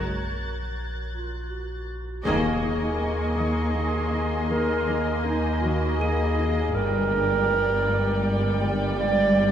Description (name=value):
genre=cinematic, suspense film score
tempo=80 BPM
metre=3/4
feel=straight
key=unclear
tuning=A4 = 444 Hz
part: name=warm sub bass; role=drone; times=0.0-9.5 s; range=G1 to Eb2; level=-32 LUFS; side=equal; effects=lush chorus
part: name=muted symphonic violin section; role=texture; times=0.0-6.3 s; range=Bb5 to A6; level=-38 LUFS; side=equal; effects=none
part: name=warm clarinet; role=second line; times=1.1-9.5 s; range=Eb4 to D5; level=-26 LUFS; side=right 3 dB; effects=none
part: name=muted symphonic violin section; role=second line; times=2.2-9.5 s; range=D5 to Eb5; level=-34 LUFS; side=equal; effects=none
part: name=muted symphonic violin section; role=melody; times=2.3-9.5 s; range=G5 to Ab5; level=-34 LUFS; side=left 1 dB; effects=none
part: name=muted symphonic viola section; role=accompaniment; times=2.3-9.5 s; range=G3 to Bb3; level=-32 LUFS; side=left 3 dB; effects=none
part: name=muted symphonic cello section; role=riff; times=2.3-9.5 s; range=G2 to Eb4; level=-33 LUFS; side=left 2 dB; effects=none
part: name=muted symphonic cello section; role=bass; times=2.3-9.5 s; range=Eb2 to G2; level=-30 LUFS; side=equal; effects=none
part: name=muted symphonic double bass section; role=bass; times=2.3-9.5 s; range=G1 to Eb2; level=-31 LUFS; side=equal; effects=none
part: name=impact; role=sound effects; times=2.3-4.5 s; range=none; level=-38 LUFS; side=left 1 dB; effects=none
part: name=small celesta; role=texture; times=3.4-9.5 s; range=Bb4 to Eb7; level=-42 LUFS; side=equal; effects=none
room=wet cathedral reverb, RT60 5.3 s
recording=in a vast, echoing space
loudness=-22 LUFS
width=side -9 dB against mid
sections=0.0-2.3 A section; 2.3-9.5 B section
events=break 0.0-2.3; band accent 2.3-3.0; impact 2.3-4.5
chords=0.0 Gb; 2.3 Ebsus4; 6.8 Gm